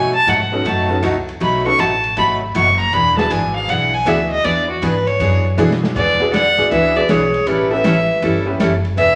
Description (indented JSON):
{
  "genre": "country, western swing",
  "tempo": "159 BPM",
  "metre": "4/4",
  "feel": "swing 66% on 8ths",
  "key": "E mixolydian",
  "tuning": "A4 = 441 Hz",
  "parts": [
    { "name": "warm fiddle", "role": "melody", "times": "0.0-9.2 s", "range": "F#4 to C#6", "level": "-19 LUFS", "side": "equal", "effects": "none" },
    { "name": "picked steel-string acoustic guitar", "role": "accompaniment", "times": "0.0-9.2 s", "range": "B2 to A4", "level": "-22 LUFS", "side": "equal", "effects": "none" },
    { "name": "upright bass", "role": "bass", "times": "0.0-9.2 s", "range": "E1 to B2", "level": "-25 LUFS", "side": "equal", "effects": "none" },
    { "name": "swinging big-band drum kit", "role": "drums", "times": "0.3-9.1 s", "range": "crash cymbal, hi-hat, kick drum, ride cymbal, snare drum", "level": "-30 LUFS", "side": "equal", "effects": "none" },
    { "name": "tack piano", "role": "accompaniment", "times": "0.5-8.6 s", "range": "B3 to B4", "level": "-25 LUFS", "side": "equal", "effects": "none" },
    { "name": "breathy clarinet", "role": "second line", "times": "6.0-9.2 s", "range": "G4 to D5", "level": "-22 LUFS", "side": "equal", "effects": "none" }
  ],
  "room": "wet large studio reverb, RT60 1.1 s",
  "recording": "vinyl crackle",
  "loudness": "-16 LUFS",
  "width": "mono",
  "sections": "0.0-6.0 A section; 6.0-9.2 B section",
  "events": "fiddle solo 0.0-6.0; drum fill 5.6-6.0",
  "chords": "0.0 B9; 2.9 E9; 7.5 A9"
}